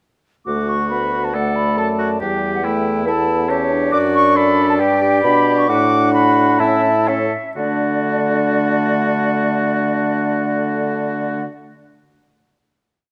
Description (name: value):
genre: quick classical-period movement for wind quintet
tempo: 122-142 BPM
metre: 4/4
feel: rubato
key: D major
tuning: A4 = 440 Hz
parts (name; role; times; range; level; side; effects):
- concert flute; melody; 0.5-11.4 s; D5 to D6; -23 LUFS; equal; none
- clear oboe; second line; 0.5-11.4 s; E4 to A4; -26 LUFS; equal; none
- warm French horn; accompaniment; 0.5-11.4 s; G3 to D4; -24 LUFS; equal; none
- mellow bassoon; bass; 0.5-11.4 s; D2 to D3; -24 LUFS; equal; none
- warm clarinet; accompaniment; 1.3-11.4 s; D4 to F#5; -24 LUFS; equal; none
room: moderate recital hall reverb, RT60 1.5 s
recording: none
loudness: -17 LUFS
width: mono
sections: 0.5-7.6 theme; 7.6-11.3 final chord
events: slowing down 3.1-7.6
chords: 0.5 D; 2.2 A7/E; 3.9 D/F#; 4.8 G; 5.7 D/A; 6.6 A; 7.6 D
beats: | 0.47 0.91 1.34 1.78 | 2.21 2.65 3.07 3.50 | 3.93 4.36 4.80 5.24 | 5.69 6.14 6.60 7.08 | 7.56 8.03 8.51 8.98 | 9.45 9.93 10.40 10.87